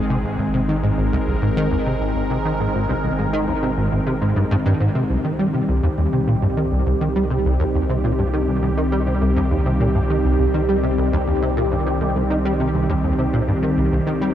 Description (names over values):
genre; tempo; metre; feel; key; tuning
ambient, sequencer-driven space music; 102 BPM; 4/4; straight; C minor; A4 = 440 Hz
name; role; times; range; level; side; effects
phased analog pad; sustained chords; 0.0-14.3 s; Eb3 to Bb4; -22 LUFS; equal; phaser, chorus
warm sub bass; bass; 0.0-14.3 s; Ab1 to C2; -25 LUFS; equal; none
plucky analog bass; riff; 0.1-14.3 s; Ab1 to G3; -21 LUFS; equal; ensemble chorus, tape echo
room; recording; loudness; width
moderate huge ambient reverb, RT60 7.3 s; dark, warm production; -17 LUFS; side -11 dB against mid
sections
0.0-14.3 A section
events
none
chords
0.0 Ab; 5.1 Cm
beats
| 0.39 0.98 1.57 2.16 | 2.75 3.33 3.92 4.51 | 5.10 5.69 6.28 6.86 | 7.45 8.04 8.63 9.22 | 9.80 10.39 10.98 11.57 | 12.16 12.75 13.33 13.92